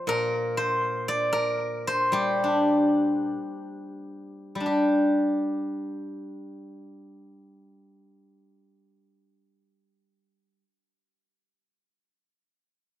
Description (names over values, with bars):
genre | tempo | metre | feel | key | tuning
chinese traditional, Chinese solo plucked strings | 44-64 BPM | 4/4 | rubato | G yu mode | A4 = 440 Hz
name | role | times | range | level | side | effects
steel-string zither | solo | 0.0-10.6 s | Bb2 to D5 | -24 LUFS | equal | slapback echo
room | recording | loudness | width
little or no reverb | recorded outdoors, with no room sound | -23 LUFS | side -13 dB against mid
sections
0.0-4.7 A section; 4.7-9.8 B section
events
slowing down 0.0-4.7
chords
none